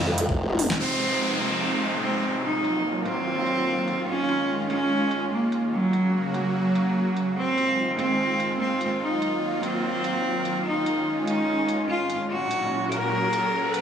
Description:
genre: heavy wobble dubstep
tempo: 146 BPM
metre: 4/4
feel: swing 54% on 16ths, half-time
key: F phrygian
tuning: A4 = 441 Hz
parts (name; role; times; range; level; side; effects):
- supersaw pad; sustained chords; 0.0-13.8 s; Bb2 to Gb4; -28 LUFS; right 1 dB; sidechain pumping, low-pass filter
- formant-sweep wobble bass; bass; 0.0-0.7 s; F1 to F2; -24 LUFS; equal; chorus, overdrive
- dubstep drum kit; drums; 0.2-13.8 s; hi-hat, snare drum, toms; -29 LUFS; left 1 dB; low-pass filter on hats, low-pass filter on snare, low-pass filter on perc, low-pass filter on toms
- rich cello; melody; 0.8-13.8 s; Gb3 to Bb4; -24 LUFS; equal; tape echo
- downlifter and riser; sound effects; 0.8-4.1, 11.7-13.8 s; none; -30 LUFS; equal; none
room: moderate digital room reverb, RT60 1.2 s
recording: studio reverb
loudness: -22 LUFS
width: side -8 dB against mid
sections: 0.8-13.8 A section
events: drum fill 0.5-0.8; riser 11.7-13.8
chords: 0.0 Fm; 0.8 Fm7; 2.4 Ebmadd9; 4.1 Dbadd9; 5.7 Gb; 7.4 Fm7; 9.0 Ebmadd9; 10.7 Dbadd9; 12.3 Gb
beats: 0.38 | 0.80 1.21 1.62 2.03 | 2.44 2.85 3.26 3.67 | 4.08 4.49 4.91 5.32 | 5.73 6.14 6.55 6.96 | 7.37 7.78 8.19 8.60 | 9.01 9.43 9.84 10.25 | 10.66 11.07 11.48 11.89 | 12.30 12.71 13.12 13.54

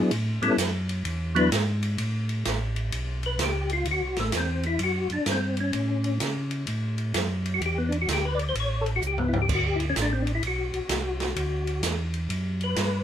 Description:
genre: soul jazz organ trio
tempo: 128 BPM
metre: 4/4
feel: swing 66% on 8ths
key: A mixolydian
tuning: A4 = 440 Hz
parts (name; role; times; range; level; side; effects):
- percussive tonewheel organ; melody; 0.0-13.0 s; F#3 to D5; -26 LUFS; left 2 dB; chorus vibrato, fast rotary speaker
- mellow tonewheel organ; bass; 0.0-13.0 s; A1 to C#3; -28 LUFS; equal; slow rotary speaker
- open jazz drum kit; drums; 0.1-12.9 s; crash cymbal, hi-hat, kick drum, ride cymbal, snare drum, toms; -30 LUFS; right 2 dB; none
room: light reverb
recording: minimal, uncompressed stereo recording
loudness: -24 LUFS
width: side -10 dB against mid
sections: 0.0-2.0 A section; 2.0-13.0 A section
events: tonewheel organ solo 2.0-13.0; drum fill 9.0-9.5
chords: 0.1 A7; 1.1 E7; 2.0 A; 3.9 D7; 5.7 A; 7.6 Dsus2; 8.6 A; 9.5 D7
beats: | 0.11 0.58 1.05 1.52 | 1.99 2.46 2.92 3.39 | 3.86 4.33 4.80 5.27 | 5.74 6.21 6.67 7.14 | 7.61 8.08 8.55 9.02 | 9.49 9.96 10.43 10.89 | 11.36 11.83 12.30 12.77

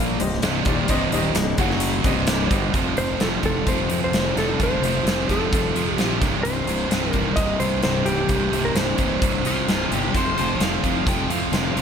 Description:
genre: classic rock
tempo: 130 BPM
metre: 4/4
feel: straight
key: unclear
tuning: A4 = 440 Hz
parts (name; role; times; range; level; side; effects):
- clear upright piano; accompaniment; 0.0-2.7 s; F4 to F#5; -28 LUFS; left 3 dB; none
- sludgy distorted guitar; riff; 0.0-11.8 s; C2 to Bb3; -27 LUFS; left 11 dB; overdrive
- tight distorted guitar; riff; 0.0-11.8 s; C2 to Bb3; -26 LUFS; right 11 dB; distortion
- fuzz fingered electric bass; bass; 0.0-11.8 s; C1 to F2; -26 LUFS; equal; overdrive
- huge arena drum kit; drums; 0.2-11.8 s; hi-hat, kick drum, snare drum; -24 LUFS; equal; none
- clean lap steel guitar; melody; 3.0-9.9 s; G4 to Eb5; -26 LUFS; equal; none
- nasal lead guitar with a parked wah; second line; 9.5-11.8 s; F4 to G5; -28 LUFS; left 5 dB; overdrive, tape echo
room: light reverb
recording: none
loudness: -19 LUFS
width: side -7 dB against mid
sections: 0.0-2.7 A section; 2.7-11.8 B section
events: none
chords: 0.2 Cm; 1.6 F#5; 2.0 Cm; 2.7 F; 6.2 C5; 10.1 F5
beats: 0.43 | 0.89 1.35 1.81 2.28 | 2.74 3.20 3.67 4.13 | 4.59 5.05 5.52 5.98 | 6.44 6.91 7.37 7.83 | 8.29 8.76 9.22 9.68 | 10.14 10.60 11.06 11.52

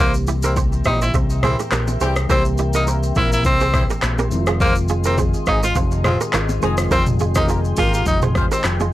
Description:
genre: afrobeats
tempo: 104 BPM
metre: 4/4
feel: swing 55% on 16ths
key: unclear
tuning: A4 = 442 Hz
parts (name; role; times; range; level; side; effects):
- edgy tenor saxophone; melody; 0.0-8.6 s; Bb3 to F4; -21 LUFS; equal; none
- mellow horn section; second line; 0.0-8.4 s; C3 to C5; -25 LUFS; left 2 dB; none
- mellow tine electric piano; accompaniment; 0.0-8.9 s; Eb3 to G4; -27 LUFS; left 1 dB; slow stereo tremolo
- glassy FM pad; sustained chords; 0.3-8.9 s; Ab4 to C6; -31 LUFS; left 3 dB; ensemble chorus, built-in reverb
- fingered electric bass; bass; 0.0-8.9 s; F1 to C2; -21 LUFS; equal; none
- afro-pop drum kit; drums; 0.1-8.9 s; handclaps, hi-hat, kick drum, rim click, shaker, toms; -21 LUFS; equal; overdrive
- kora; riff; 0.3-8.9 s; E4 to F5; -26 LUFS; right 6 dB; analog delay
- bongos and congas; percussion; 0.6-8.9 s; none; -29 LUFS; equal; none
room: little or no reverb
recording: dry, gritty hardware recording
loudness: -16 LUFS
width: side -15 dB against mid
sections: 0.0-8.9 A section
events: none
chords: 0.0 C7; 4.3 Fm7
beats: 0.56 1.14 1.72 | 2.30 2.87 3.45 4.03 | 4.60 5.18 5.76 6.33 | 6.91 7.49 8.06 8.64

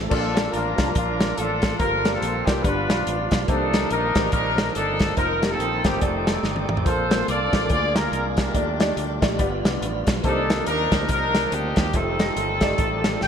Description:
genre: uptempo gospel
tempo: 142 BPM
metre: 4/4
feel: swing 60% on 8ths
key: Bb major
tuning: A4 = 440 Hz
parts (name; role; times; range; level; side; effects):
- tonewheel organ; sustained chords; 0.0-13.3 s; Eb3 to D5; -32 LUFS; right 2 dB; slow rotary speaker, overdrive
- fingered electric bass; bass; 0.0-13.3 s; F1 to Eb2; -29 LUFS; equal; none
- mellow horn section; melody; 0.1-13.3 s; Bb3 to G5; -24 LUFS; left 1 dB; ping-pong delay
- warm upright piano; accompaniment; 0.1-13.1 s; G2 to A5; -28 LUFS; left 1 dB; ensemble chorus
- warm soul drum kit; drums; 0.1-13.3 s; crash cymbal, hi-hat, kick drum, snare drum, toms; -24 LUFS; equal; gated reverb
room: moderate lush hall reverb, RT60 1.6 s, small room ambience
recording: bright 1980s-style digital production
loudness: -20 LUFS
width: side -7 dB against mid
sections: 0.1-13.3 A section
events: drum fill 6.4-6.9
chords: 0.1 Bbmaj7; 1.8 Gm11; 2.6 G7; 3.5 Cm9; 5.2 F7sus4; 6.0 F13; 6.9 Bbmaj9; 7.7 Bb7/D; 8.5 Ebmaj9#11; 9.4 G7; 10.2 Cm9; 11.9 F9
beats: | 0.11 0.53 0.95 1.37 | 1.80 2.22 2.64 3.06 | 3.48 3.90 4.33 4.75 | 5.17 5.59 6.01 6.44 | 6.86 7.28 7.70 8.13 | 8.55 8.97 9.40 9.82 | 10.24 10.67 11.09 11.52 | 11.94 12.36 12.79 13.21

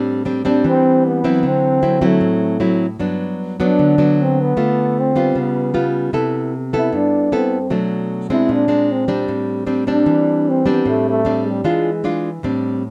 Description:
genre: bossa nova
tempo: 153 BPM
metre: 4/4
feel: straight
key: A dorian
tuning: A4 = 440 Hz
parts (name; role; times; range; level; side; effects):
- nylon-string guitar; accompaniment; 0.0-12.9 s; G2 to A4; -19 LUFS; equal; none
- breathy trombone; melody; 0.5-12.1 s; G3 to E4; -20 LUFS; equal; none
room: light reverb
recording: none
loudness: -17 LUFS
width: mono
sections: 0.0-12.4 A section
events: none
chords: 0.0 Am11; 1.4 D9; 3.0 Gmaj7; 4.6 Dm7; 5.4 C#7#11; 6.1 Cmaj13; 7.7 Bm7; 8.5 Bb9; 9.3 Am7; 11.6 E7b9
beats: 0.25 0.65 1.04 | 1.43 1.82 2.21 2.61 | 3.00 3.39 3.79 4.18 | 4.57 4.96 5.36 5.75 | 6.14 6.53 6.93 7.32 | 7.71 8.11 8.50 8.89 | 9.28 9.68 10.07 10.46 | 10.86 11.25 11.64 12.04 | 12.43 12.82

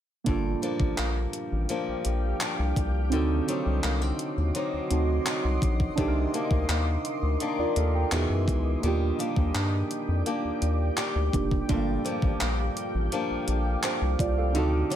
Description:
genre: contemporary R&B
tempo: 84 BPM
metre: 4/4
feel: straight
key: G minor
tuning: A4 = 440 Hz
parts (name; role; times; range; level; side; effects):
- muted felt-like synth keys; accompaniment; 0.2-15.0 s; A3 to G5; -30 LUFS; right 5 dB; chorus
- granular cloud pad; sustained chords; 1.3-15.0 s; F#4 to D6; -35 LUFS; left 1 dB; built-in reverb
- flamenco guitar; arpeggios; 0.3-15.0 s; G2 to G4; -33 LUFS; left 4 dB; ping-pong delay
- round analog bass; bass; 0.3-14.8 s; F1 to G2; -27 LUFS; equal; none
- gated 80s digital drum machine; drums; 0.3-15.0 s; handclaps, hi-hat, kick drum; -30 LUFS; equal; gated reverb, overdrive
room: digital ambience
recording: none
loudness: -24 LUFS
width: side -10 dB against mid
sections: 0.3-15.0 A section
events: none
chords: 0.3 Gm7; 3.1 D7b9; 6.0 Cm9; 8.1 Emaj7; 8.8 Ebmaj7; 11.7 Gm7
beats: | 0.26 0.98 1.69 2.41 | 3.12 3.83 4.55 5.26 | 5.98 6.69 7.41 8.12 | 8.83 9.55 10.26 10.98 | 11.69 12.41 13.12 13.83 | 14.55

